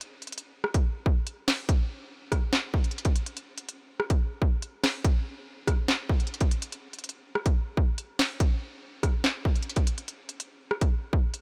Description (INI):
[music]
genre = hip hop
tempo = 143 BPM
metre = 4/4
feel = half-time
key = none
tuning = none
[part]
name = drill drum kit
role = drums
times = 0.0-11.4 s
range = handclaps, hi-hat, kick drum, rim click, snare drum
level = -28 LUFS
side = equal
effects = none
[sound]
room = digital ambience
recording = none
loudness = -28 LUFS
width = mono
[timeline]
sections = 0.0-11.4 A section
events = none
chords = none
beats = | 0.01 0.43 0.85 1.27 | 1.69 2.11 2.53 2.95 | 3.37 3.79 4.21 4.62 | 5.04 5.46 5.88 6.30 | 6.72 7.14 7.56 7.98 | 8.40 8.82 9.24 9.66 | 10.08 10.50 10.92 11.34